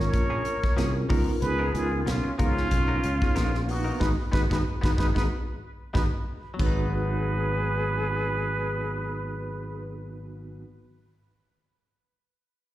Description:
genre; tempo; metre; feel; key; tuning
electric jazz fusion; 93 BPM; 4/4; swing 55% on 16ths; G# dorian; A4 = 438 Hz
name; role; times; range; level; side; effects
trumpet with plunger mute; melody; 0.0-9.9 s; E#4 to C#5; -32 LUFS; right 2 dB; slapback echo, tape echo
hollow concert flute; second line; 0.0-9.9 s; C#4 to A#4; -34 LUFS; left 2 dB; slapback echo
mellow tine electric piano; accompaniment; 0.0-10.6 s; A#3 to E#5; -34 LUFS; right 1 dB; fast stereo tremolo, slapback echo
direct-recorded clean electric guitar; stabs; 0.0-10.7 s; E#3 to A#4; -38 LUFS; left 3 dB; wide subtle chorus, slapback echo
sustaining fretless electric bass; bass; 0.0-10.6 s; G#1 to C#2; -28 LUFS; equal; none
modern studio drum kit; drums; 0.0-6.8 s; hi-hat, kick drum, snare drum, splash cymbal; -27 LUFS; equal; none
room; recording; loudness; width
little or no reverb; live gig heard through the venue's PA, recital hall reverb; -24 LUFS; side -14 dB against mid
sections
0.0-6.6 A section; 6.6-9.2 B section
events
band accent 4.0-6.6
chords
0.0 A#m7; 1.1 C#13; 4.0 G#m7

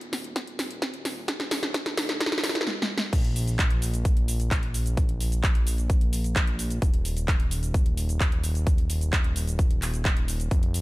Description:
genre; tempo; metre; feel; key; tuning
EDM, festival progressive house; 130 BPM; 4/4; straight; unclear; A4 = 437 Hz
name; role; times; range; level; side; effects
fat analog bass; bass; 0.0-10.8 s; Eb1 to Bb1; -28 LUFS; equal; sidechain pumping, high-pass filter
big-room dance drum kit; drums; 0.0-10.8 s; crash cymbal, handclaps, hi-hat, shaker, snare drum; -29 LUFS; equal; studio ambience
electronic kick drum; drums; 0.4-10.6 s; none; -23 LUFS; equal; high-pass filter on kick, studio ambience
room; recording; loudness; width
light reverb; none; -23 LUFS; side -19 dB against mid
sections
0.0-3.1 A section; 3.1-10.8 B section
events
build-up 0.0-3.1; drum fill 0.0-2.7, 2.7-3.1; stop 2.7-3.1; drop 3.1-10.8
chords
none

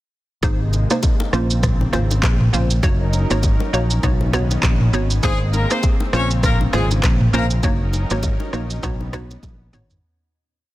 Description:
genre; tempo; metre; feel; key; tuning
afrobeats; 100 BPM; 4/4; swing 58% on 16ths; unclear; A4 = 438 Hz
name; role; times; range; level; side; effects
hollow square pluck; accompaniment; 0.4-10.0 s; Bb3 to Db5; -25 LUFS; right 2 dB; chorus
warm analog pad; sustained chords; 0.4-10.0 s; C3 to Bb4; -28 LUFS; left 1 dB; wide subtle chorus
fingered electric bass; bass; 0.4-10.0 s; Gb1 to B1; -20 LUFS; equal; none
afro-pop drum kit; drums; 0.4-10.0 s; handclaps, kick drum, rim click, shaker, toms; -20 LUFS; equal; none
congas and bongos; percussion; 0.4-9.6 s; none; -30 LUFS; left 3 dB; none
clear horn section; second line; 5.2-7.4 s; Ab3 to Db5; -24 LUFS; left 2 dB; none
room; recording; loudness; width
digital ambience; dense, heavily limited modern master; -16 LUFS; side -16 dB against mid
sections
0.4-10.0 chorus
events
fade-out 7.6-10.0; drum fill 9.4-10.0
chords
0.4 Abadd9; 1.3 Bbmadd9; 2.8 Gb6; 4.0 Badd9; 5.2 Abadd9; 6.1 Bbmadd9; 7.6 Gb6; 8.8 Badd9

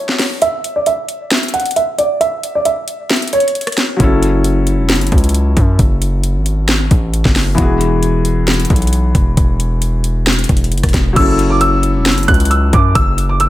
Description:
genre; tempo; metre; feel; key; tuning
hip hop, trap; 134 BPM; 4/4; half-time; F# minor; A4 = 440 Hz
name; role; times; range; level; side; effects
dark baby grand piano; melody; 0.0-4.0, 11.2-13.5 s; C#5 to F#6; -16 LUFS; right 2 dB; low-pass filter, analog delay
felt-muted upright piano; accompaniment; 0.0-0.4, 4.0-13.5 s; E3 to A4; -19 LUFS; left 2 dB; low-pass filter
trap drum kit; drums; 0.1-13.5 s; crash cymbal, hi-hat, kick drum, rim click, snare drum; -14 LUFS; equal; none
distorted 808-style bass; bass; 4.0-13.5 s; E1 to F#2; -14 LUFS; equal; distortion
room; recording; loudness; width
moderate plate reverb, RT60 1.0 s; dreamy mix soaked in reverb; -11 LUFS; side -14 dB against mid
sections
0.0-11.2 A section; 11.2-13.5 B section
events
break 0.0-4.0; filter sweep 0.0-4.0; kick muted 3.1-4.0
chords
0.4 N.C.; 4.0 F#m7; 7.6 Eadd9; 11.2 F#m7

